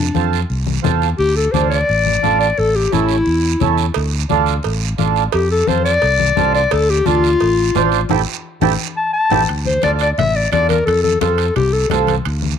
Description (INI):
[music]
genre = latin, cumbia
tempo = 174 BPM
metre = 4/4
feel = straight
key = D minor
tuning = A4 = 438 Hz
[part]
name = clear clarinet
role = melody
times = 0.0-12.1 s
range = D4 to A5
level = -16 LUFS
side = left 3 dB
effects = slapback echo
[part]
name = fingered electric bass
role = bass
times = 0.0-12.5 s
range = A1 to F2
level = -19 LUFS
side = equal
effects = none
[part]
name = mellow accordion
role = accompaniment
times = 0.1-12.2 s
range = C4 to C5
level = -20 LUFS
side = right 13 dB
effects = none
[part]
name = congas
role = percussion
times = 0.1-12.6 s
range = none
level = -23 LUFS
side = left 11 dB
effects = none
[part]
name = guiro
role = percussion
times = 0.1-12.6 s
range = none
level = -29 LUFS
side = right 15 dB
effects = none
[part]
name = cowbell and timbales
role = percussion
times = 3.9-12.4 s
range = none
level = -24 LUFS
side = right 14 dB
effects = none
[sound]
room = moderate spring reverb, RT60 1.3 s, small room ambience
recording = 1960s-style stereo with parts hard left and right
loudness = -13 LUFS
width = side -8 dB against mid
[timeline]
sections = 0.0-9.5 A section; 9.5-12.6 B section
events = clarinet solo 0.0-9.5; band accent 8.1-9.5; drum fill 9.0-9.5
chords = 0.0 F; 1.2 Dm; 2.6 A; 4.0 Dm; 5.3 F; 6.7 Dm; 8.1 A5; 9.5 Dm; 10.9 F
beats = 0.16 0.50 0.85 | 1.19 1.54 1.88 2.23 | 2.57 2.92 3.27 3.61 | 3.96 4.30 4.65 4.99 | 5.34 5.68 6.03 6.38 | 6.72 7.07 7.41 7.76 | 8.11 8.45 8.80 9.14 | 9.49 9.84 10.18 10.53 | 10.87 11.22 11.57 11.91 | 12.26